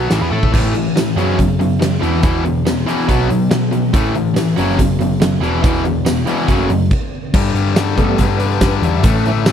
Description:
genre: classic rock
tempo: 141 BPM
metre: 4/4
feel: straight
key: unclear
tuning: A4 = 440 Hz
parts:
  - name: distorted electric guitar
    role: riff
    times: 0.0-9.5 s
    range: E2 to A4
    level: -18 LUFS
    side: left 10 dB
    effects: overdrive
  - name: overdriven semi-hollow guitar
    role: riff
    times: 0.0-6.9 s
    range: A2 to A4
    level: -20 LUFS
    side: right 13 dB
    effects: none
  - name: hollow-body short-scale picked electric bass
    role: bass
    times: 0.0-9.5 s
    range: E1 to B2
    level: -19 LUFS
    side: equal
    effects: none
  - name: huge arena drum kit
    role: drums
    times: 0.1-9.5 s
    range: crash cymbal, hi-hat, kick drum, snare drum, tambourine, toms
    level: -18 LUFS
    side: right 1 dB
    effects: none
  - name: bright tonewheel organ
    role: sustained chords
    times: 8.0-9.5 s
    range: E3 to F#5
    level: -21 LUFS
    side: right 2 dB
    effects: slow rotary speaker, overdrive, chorus vibrato
room: little or no reverb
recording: none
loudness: -13 LUFS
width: side -8 dB against mid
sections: 0.5-7.3 A section; 7.3-9.5 B section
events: drum fill 0.3; stop 6.9-7.3; tonewheel organ solo 7.3-9.5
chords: 0.0 B5; 0.5 A5; 1.2 F#sus4; 2.0 E5; 3.1 B5; 3.9 A5; 4.6 F#sus4; 5.4 E5; 6.5 F#m; 7.3 Gadd9

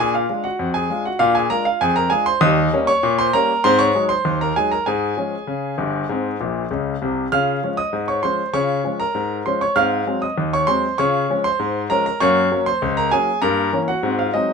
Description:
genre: ragtime piano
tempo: 98 BPM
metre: 2/4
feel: straight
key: Db major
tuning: A4 = 440 Hz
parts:
  - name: warm concert grand piano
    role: solo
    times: 0.0-14.5 s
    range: G1 to F6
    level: -17 LUFS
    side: equal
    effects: none
room: light reverb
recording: minimal, uncompressed stereo recording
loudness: -17 LUFS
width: side -5 dB against mid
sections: 0.0-14.5 A section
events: grand piano fill 6.4-7.3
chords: 0.0 Bb7; 2.4 Eb7; 3.6 Ab7; 4.9 Db/Ab; 6.1 Ab; 7.3 Db; 9.8 Ab7; 11.0 Db; 12.2 Gb; 13.4 Gdim7

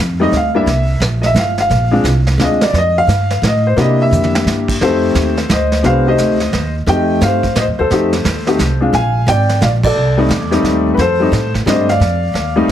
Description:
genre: jazz piano trio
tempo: 174 BPM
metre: 3/4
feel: swing 64% on 8ths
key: F mixolydian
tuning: A4 = 440 Hz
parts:
  - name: upright bass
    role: bass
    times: 0.0-12.7 s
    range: G1 to C3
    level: -16 LUFS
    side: right 1 dB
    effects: none
  - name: warm upright piano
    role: melody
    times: 0.2-12.7 s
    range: G3 to Ab5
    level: -14 LUFS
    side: left 1 dB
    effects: plate reverb
  - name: vintage brush drum kit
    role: drums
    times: 0.3-12.7 s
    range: brushed snare drum, crash cymbal, hi-hat, kick drum, snare drum, toms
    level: -20 LUFS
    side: right 2 dB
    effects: none
room: moderate club reverb, RT60 0.7 s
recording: heavily compressed radio sound, multiband compression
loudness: -11 LUFS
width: side -10 dB against mid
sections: 0.0-4.8 A section; 4.8-12.7 B section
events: upright piano solo 0.0-4.8; drum fill 4.1-4.5; band accent 9.8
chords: 0.0 F7(no3); 0.7 C7; 1.7 Bb7; 2.7 F; 3.8 C7; 4.8 F7; 8.9 Bb7; 10.0 F7

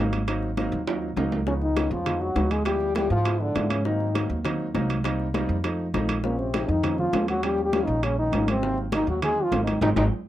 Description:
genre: Afro-Cuban jazz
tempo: 201 BPM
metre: 4/4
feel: straight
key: Ab mixolydian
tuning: A4 = 440 Hz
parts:
  - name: warm baby grand piano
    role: accompaniment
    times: 0.0-10.1 s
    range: Eb3 to Fb4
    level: -30 LUFS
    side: right 1 dB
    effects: none
  - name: upright bass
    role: bass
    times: 0.0-10.1 s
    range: Ab1 to Ab2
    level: -28 LUFS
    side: equal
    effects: none
  - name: bongos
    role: percussion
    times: 0.1-10.0 s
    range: none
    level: -35 LUFS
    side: left 8 dB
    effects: none
  - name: congas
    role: percussion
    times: 0.1-10.0 s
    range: none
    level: -31 LUFS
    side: equal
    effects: none
  - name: timbales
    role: percussion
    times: 0.1-10.0 s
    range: none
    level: -33 LUFS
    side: right 6 dB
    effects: none
  - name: breathy trombone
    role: melody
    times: 1.5-10.0 s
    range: Bb3 to Ab4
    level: -26 LUFS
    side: equal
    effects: none
  - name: clear French horn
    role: second line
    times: 1.5-10.0 s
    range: Bb2 to Ab3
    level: -33 LUFS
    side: left 4 dB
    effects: none
room: light reverb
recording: dry, close 1970s-style studio recording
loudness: -22 LUFS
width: side -13 dB against mid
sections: 0.0-10.3 A section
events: drum fill 0.9-1.5, 9.8-10.3; band accent 9.8-10.3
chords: 0.0 Ab7; 1.5 Db7; 2.7 Ddim7; 3.9 Ab7; 5.0 Cm7; 5.6 F7; 6.2 Bbm7; 7.4 Eb7; 8.6 Ab7

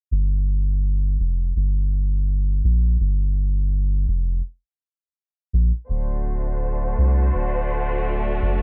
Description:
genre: trip hop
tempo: 83 BPM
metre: 4/4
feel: swing 56% on 16ths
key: unclear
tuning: A4 = 436 Hz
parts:
  - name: soft dub sub bass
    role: bass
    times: 0.1-8.6 s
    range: D1 to C2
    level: -22 LUFS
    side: equal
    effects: none
  - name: warm studio violin section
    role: sustained chords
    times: 5.9-8.6 s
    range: A3 to C5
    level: -29 LUFS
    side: equal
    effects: none
room: little or no reverb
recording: low-pass filter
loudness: -22 LUFS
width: mono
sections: 0.1-8.6 A section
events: filter sweep 0.1-8.6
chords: 0.1 N.C.; 5.9 D7

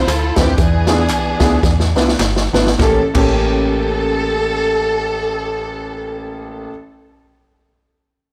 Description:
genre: uptempo gospel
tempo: 97-123 BPM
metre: 4/4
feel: swing 58% on 8ths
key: unclear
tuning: A4 = 440 Hz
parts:
  - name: warm studio string section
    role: melody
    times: 0.0-6.7 s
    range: B3 to A4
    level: -23 LUFS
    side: equal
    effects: slapback echo
  - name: woody FM bass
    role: bass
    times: 0.0-6.7 s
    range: G1 to E2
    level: -22 LUFS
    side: equal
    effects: tube saturation
  - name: swinging big-band drum kit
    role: drums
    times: 0.1-3.3 s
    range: crash cymbal, hi-hat, kick drum, snare drum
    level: -20 LUFS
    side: equal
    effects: none
  - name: handclaps and tambourine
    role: percussion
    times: 0.1-3.3 s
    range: none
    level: -30 LUFS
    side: equal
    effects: none
  - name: warm concert grand piano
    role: accompaniment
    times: 0.4-6.7 s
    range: A1 to B4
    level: -21 LUFS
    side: equal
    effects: none
room: light reverb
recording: blown-out, overdriven recording, overdrive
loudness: -16 LUFS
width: mono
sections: 0.0-2.8 A section; 2.8-7.7 B section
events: slowing down 0.0-2.8; drum fill 1.6-2.8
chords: 0.0 Dm9; 0.6 E7b9; 2.8 A7b9

